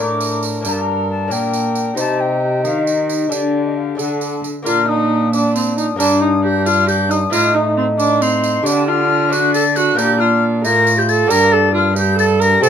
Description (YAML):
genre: classical, renaissance-style consort dance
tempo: 90 BPM (dotted quarters)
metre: 6/8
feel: straight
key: G minor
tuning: A4 = 436 Hz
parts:
  - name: silver concert flute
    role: melody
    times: 0.0-12.7 s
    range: D5 to Bb6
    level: -18 LUFS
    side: left 5 dB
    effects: none
  - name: warm viola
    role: second line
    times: 0.0-12.7 s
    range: C4 to Bb4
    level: -20 LUFS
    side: right 5 dB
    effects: none
  - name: lute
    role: accompaniment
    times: 0.0-12.7 s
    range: G2 to Eb5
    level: -23 LUFS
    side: left 5 dB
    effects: none
  - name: mellow bassoon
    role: accompaniment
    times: 0.0-12.7 s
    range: C4 to F4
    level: -22 LUFS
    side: left 2 dB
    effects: none
  - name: dark cello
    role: bass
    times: 0.0-12.7 s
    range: G2 to Eb3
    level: -21 LUFS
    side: right 2 dB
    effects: none
  - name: tambourine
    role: percussion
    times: 0.2-12.7 s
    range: none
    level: -26 LUFS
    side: right 8 dB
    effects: none
room: light reverb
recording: minimal, uncompressed stereo recording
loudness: -13 LUFS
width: side -8 dB against mid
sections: 0.0-4.7 A section; 4.7-12.7 A section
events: none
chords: 0.0 Bb; 0.6 Gm; 2.0 Cm; 3.3 Dsus4; 4.7 Bb; 6.0 Gm; 7.3 Adim; 8.7 Dsus4; 9.3 D5; 10.0 Bb; 11.3 Gm